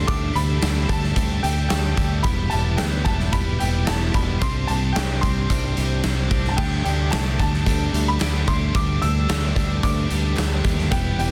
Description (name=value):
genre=indie rock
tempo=111 BPM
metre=4/4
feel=straight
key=unclear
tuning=A4 = 440 Hz
part: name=clear upright piano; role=melody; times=0.0-11.3 s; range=G5 to E6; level=-32 LUFS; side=equal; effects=slapback echo
part: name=glockenspiel with brass mallets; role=second line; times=0.0-11.3 s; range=G6 to E7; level=-41 LUFS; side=equal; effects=none
part: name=tonewheel organ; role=sustained chords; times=0.0-11.3 s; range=D4 to G5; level=-40 LUFS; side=equal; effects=none
part: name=high-gain distorted guitar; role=riff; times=0.0-11.3 s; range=E3 to A4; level=-33 LUFS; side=equal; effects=distortion, analog chorus, slapback echo
part: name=twelve-string electric guitar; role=riff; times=0.0-11.3 s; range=C3 to A4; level=-31 LUFS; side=equal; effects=none
part: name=fingered electric bass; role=bass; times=0.0-11.3 s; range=E1 to Eb2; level=-25 LUFS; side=equal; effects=none
part: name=big rock drum kit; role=drums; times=0.1-11.3 s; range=crash cymbal, hi-hat, kick drum, snare drum, tambourine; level=-26 LUFS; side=equal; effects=soft clipping on kick
part: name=group handclap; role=percussion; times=0.6-10.5 s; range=none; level=-41 LUFS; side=equal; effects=none
room=little or no reverb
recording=dense, heavily limited modern master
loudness=-21 LUFS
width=mono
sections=0.0-11.3 A section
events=none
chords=0.0 Dsus4; 2.2 Em; 4.4 Csus2; 6.6 Dsus4